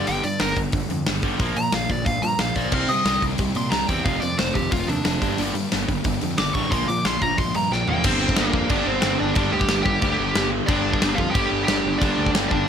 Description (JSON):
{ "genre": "punk rock", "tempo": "181 BPM", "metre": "4/4", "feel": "straight", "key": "G minor", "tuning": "A4 = 440 Hz", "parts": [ { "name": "high-gain lead guitar", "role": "melody", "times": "0.0-12.7 s", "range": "Bb3 to D6", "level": "-24 LUFS", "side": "equal", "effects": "distortion" }, { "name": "crunchy overdriven guitar", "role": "riff", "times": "0.0-12.7 s", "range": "F2 to C4", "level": "-26 LUFS", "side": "right 1 dB", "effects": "none" }, { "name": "fuzz picked electric bass", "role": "bass", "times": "0.0-12.6 s", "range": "F1 to C3", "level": "-28 LUFS", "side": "equal", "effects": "overdrive" }, { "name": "big rock drum kit", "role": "drums", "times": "0.1-12.6 s", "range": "crash cymbal, hi-hat, kick drum, snare drum, toms", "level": "-24 LUFS", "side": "equal", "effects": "none" }, { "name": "fuzz guitar", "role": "riff", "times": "2.7-8.0 s", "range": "F2 to G4", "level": "-30 LUFS", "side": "equal", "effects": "distortion" } ], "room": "little or no reverb", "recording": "none", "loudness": "-19 LUFS", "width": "side -8 dB against mid", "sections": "0.0-8.0 A section; 8.0-12.7 B section", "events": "lead electric guitar solo 0.0-8.0; drum fill 7.7-8.0", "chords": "0.0 G5; 1.4 Bb5; 2.7 Cm; 4.1 F; 5.2 Gm; 6.7 Bb; 8.0 G5" }